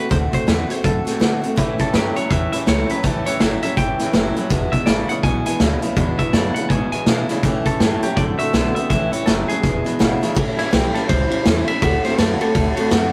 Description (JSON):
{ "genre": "rockabilly", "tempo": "164 BPM", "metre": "4/4", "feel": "swing 61% on 8ths", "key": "A mixolydian", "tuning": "A4 = 441 Hz", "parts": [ { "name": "clean electric guitar", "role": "melody", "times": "0.0-13.1 s", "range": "E4 to G#5", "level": "-28 LUFS", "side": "equal", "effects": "spring reverb" }, { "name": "picked steel-string acoustic guitar", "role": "accompaniment", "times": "0.0-13.1 s", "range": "E2 to F#4", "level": "-25 LUFS", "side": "equal", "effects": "none" }, { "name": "upright bass", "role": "bass", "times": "0.1-13.1 s", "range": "E1 to B2", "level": "-28 LUFS", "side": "equal", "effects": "none" }, { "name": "vintage drum kit", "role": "drums", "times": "0.1-13.0 s", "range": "hi-hat, kick drum, ride cymbal, snare drum", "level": "-22 LUFS", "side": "equal", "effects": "none" }, { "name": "twangy electric guitar", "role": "riff", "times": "1.6-10.4 s", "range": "E2 to B3", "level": "-28 LUFS", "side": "equal", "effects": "none" } ], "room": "moderate stone room reverb, RT60 1.2 s", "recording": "rough rehearsal-room recording", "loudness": "-19 LUFS", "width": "mono", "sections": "0.0-10.4 A section; 10.4-13.1 B section", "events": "clean electric guitar solo 10.4-13.1", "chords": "0.0 D7; 1.6 A7; 4.5 E7; 7.4 A7; 8.2 D7; 8.9 A7; 9.6 E7; 10.4 A7; 11.8 D7" }